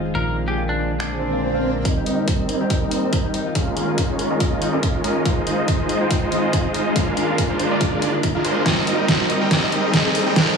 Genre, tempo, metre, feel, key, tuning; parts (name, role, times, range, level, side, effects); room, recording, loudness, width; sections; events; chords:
future bass; 141 BPM; 4/4; swing 55% on 16ths, half-time; C minor; A4 = 440 Hz
semi-hollow electric guitar; melody; 0.0-1.8 s; D4 to Bb4; -27 LUFS; equal; sidechain pumping, digital delay
ethereal airy pad; sustained chords; 0.0-10.6 s; D3 to G4; -29 LUFS; right 1 dB; ensemble chorus, built-in reverb, vintage 12-bit sampler grit, sidechain pumping
concert harp; arpeggios; 0.0-10.6 s; Bb3 to F5; -28 LUFS; left 6 dB; sidechain pumping, digital delay
fat analog bass; bass; 0.0-1.8 s; F1 to Bb1; -27 LUFS; right 1 dB; sidechain pumping
dubstep drum kit; drums; 1.0-10.5 s; finger snaps, hi-hat, snare drum; -23 LUFS; equal
swell and riser; sound effects; 1.1-10.6 s; -28 LUFS; right 1 dB
supersaw chords; riff; 1.9-10.6 s; G3 to G5; -21 LUFS; right 1 dB; sidechain pumping, low-pass filter, digital delay
electronic kick drum; drums; 1.9-10.5 s; -23 LUFS; equal
moderate digital room reverb, RT60 1.3 s, digital ambience; high-pass filter, studio reverb; -18 LUFS; side -5 dB against mid
0.0-1.9 A section; 1.9-10.6 B section
filter sweep on drum 0.0-1.9; filter sweep on harp 0.0-1.9; swell 1.1-1.9; build-up 1.9-10.6; riser 1.9-10.6; filter sweep on supersaw synth 1.9-10.6; filter sweep 1.9-10.6; drum fill 8.7-10.6
0.1 Bb7; 1.9 Cm7; 3.3 Db69; 7.0 Bb7; 8.7 Cm7